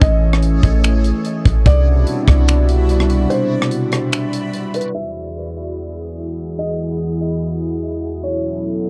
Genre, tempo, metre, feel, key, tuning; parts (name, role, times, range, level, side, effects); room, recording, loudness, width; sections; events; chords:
hip hop, atmospheric cloud-rap; 146 BPM; 4/4; half-time; E major; A4 = 440 Hz
felt-muted upright piano; melody; 0.0-8.6 s; B4 to E5; -28 LUFS; equal; delay
warm analog pad; sustained chords; 0.0-8.9 s; E2 to A4; -22 LUFS; equal; chorus, sidechain pumping
clean 808-style bass; bass; 0.0-3.3 s; A1 to C2; -16 LUFS; equal
tight funk drum kit; drums; 0.0-4.9 s; finger snaps, hi-hat, kick drum, rim click; -19 LUFS; equal
backwards swelling texture; texture; 0.0-8.9 s; B3 to D#6; -35 LUFS; equal; built-in reverb
light reverb, studio reverb; dark, warm production, low-pass filter; -17 LUFS; mono
0.0-4.9 A section; 4.9-8.9 B section
break 3.3-4.9; filter sweep 4.9-8.9
0.0 Amaj7; 1.7 Cmaj9#11; 4.9 Emaj9; 8.2 B9